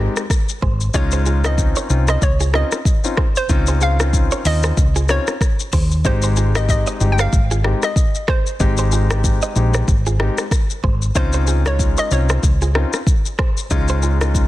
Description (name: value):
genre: afrobeats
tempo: 94 BPM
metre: 4/4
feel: swing 58% on 16ths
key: unclear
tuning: A4 = 436 Hz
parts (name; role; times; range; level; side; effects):
- hollow square pluck; melody; 0.0-14.5 s; C5 to G5; -24 LUFS; equal; chorus, tape echo
- warm grand piano; accompaniment; 0.0-14.5 s; Ab3 to G4; -24 LUFS; left 4 dB; none
- direct-recorded clean electric guitar; riff; 0.0-14.1 s; F4 to Eb5; -28 LUFS; right 6 dB; spring reverb, tape echo
- hollow-body short-scale fingered electric bass; bass; 0.0-14.5 s; G1 to Eb2; -17 LUFS; equal; none
- afro-pop drum kit; drums; 0.2-14.5 s; hi-hat, kick drum, rim click, shaker; -18 LUFS; equal; vintage 12-bit sampler grit, soft clipping on snare
room: digital ambience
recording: dense, heavily limited modern master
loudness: -15 LUFS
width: side -16 dB against mid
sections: 0.0-14.5 A section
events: none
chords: 0.0 Abmaj7; 0.9 Dbmaj9; 6.0 Abmaj7; 11.2 Dbmaj9